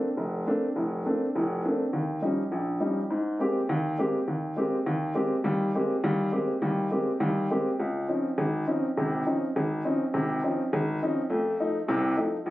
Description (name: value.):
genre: jazz.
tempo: 205 BPM.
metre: 4/4.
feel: swing 62% on 8ths.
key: Ab major from 3.1 s.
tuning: A4 = 440 Hz.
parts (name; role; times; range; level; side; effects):
warm upright piano; solo; 0.0-12.5 s; F1 to G4; -25 LUFS; equal; none.
room: light reverb.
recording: recorded on a phone in the room, club ambience, compression.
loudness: -25 LUFS.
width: side -16 dB against mid.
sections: 0.0-3.1 A section; 3.1-12.5 B section.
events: none.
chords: 0.0 Bbmaj9; 1.9 Eb9; 3.1 Abmaj9; 7.8 Dbmaj9; 11.3 F7.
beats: 0.17 0.46 | 0.75 1.05 1.34 1.64 | 1.93 2.22 2.52 2.81 | 3.10 3.40 3.69 3.98 | 4.27 4.57 4.86 5.15 | 5.44 5.74 6.03 6.32 | 6.61 6.90 7.20 7.49 | 7.78 8.07 8.37 8.66 | 8.95 9.24 9.53 9.83 | 10.12 10.41 10.70 10.99 | 11.29 11.58 11.87 12.16 | 12.46.